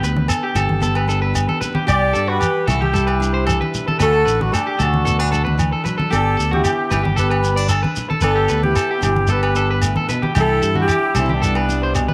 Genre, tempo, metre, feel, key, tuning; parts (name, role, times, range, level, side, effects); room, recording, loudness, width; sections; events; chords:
highlife guitar band; 113 BPM; 4/4; straight; G major; A4 = 439 Hz
fingerpicked steel-string acoustic guitar; accompaniment; 0.0-12.1 s; G2 to G4; -28 LUFS; equal
electric guitar at the edge of break-up; arpeggios; 0.0-12.1 s; F#4 to D5; -25 LUFS; equal; slapback echo
fingered electric bass; bass; 0.0-12.1 s; G1 to G2; -22 LUFS; equal
shekere; percussion; 0.0-12.1 s; -26 LUFS; equal
congas; percussion; 0.2-12.1 s; -27 LUFS; equal
agogo bells; percussion; 0.3-12.1 s; -29 LUFS; equal
warm horn section; melody; 1.9-12.1 s; B3 to D5; -22 LUFS; equal; slapback echo
moderate spring reverb, RT60 1.5 s, small room ambience; -18 LUFS; mono
0.0-12.1 A section
0.0 Gadd9; 1.9 Cadd9; 4.0 D; 6.1 Gadd9; 10.4 Cadd9